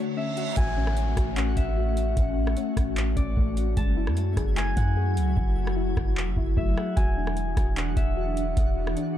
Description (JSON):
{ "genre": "hip hop, atmospheric cloud-rap", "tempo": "150 BPM", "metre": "4/4", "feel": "half-time", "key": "A major", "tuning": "A4 = 440 Hz", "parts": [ { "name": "ethereal airy pad", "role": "sustained chords", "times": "0.0-9.2 s", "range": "D3 to C#5", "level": "-31 LUFS", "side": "left 2 dB", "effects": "ensemble chorus, built-in reverb, sidechain pumping" }, { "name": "soft round pluck", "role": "arpeggios", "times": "0.0-9.2 s", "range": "G#3 to G#4", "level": "-37 LUFS", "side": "left 5 dB", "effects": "chorus, low-pass filter, ping-pong delay" }, { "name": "reverse cymbal and downlifter", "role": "sound effects", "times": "0.0-3.8 s", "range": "none", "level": "-39 LUFS", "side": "right 2 dB", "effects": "none" }, { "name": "twinkling granular texture", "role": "texture", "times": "0.0-9.2 s", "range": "A3 to G#6", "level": "-42 LUFS", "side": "equal", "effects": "built-in reverb" }, { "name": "Celtic harp", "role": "melody", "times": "0.2-9.2 s", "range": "D5 to A5", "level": "-34 LUFS", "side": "left 1 dB", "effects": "low-pass filter, ping-pong delay" }, { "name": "booming analog drum machine", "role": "drums", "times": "0.4-9.1 s", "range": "handclaps, hi-hat, kick drum, rim click", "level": "-27 LUFS", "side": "equal", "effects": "none" }, { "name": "warm 808-style bass", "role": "bass", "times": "0.6-9.0 s", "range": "E1 to F#2", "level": "-26 LUFS", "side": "equal", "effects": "none" } ], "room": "digital ambience", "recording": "dark, warm production", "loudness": "-23 LUFS", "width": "side -11 dB against mid", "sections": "0.6-9.2 A section", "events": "break 0.0-0.6; reverse cymbal 0.0-0.6; hi-hats muted 5.4-7.0", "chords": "0.0 Dmaj7; 0.6 A6; 3.8 F#m9; 7.0 E9" }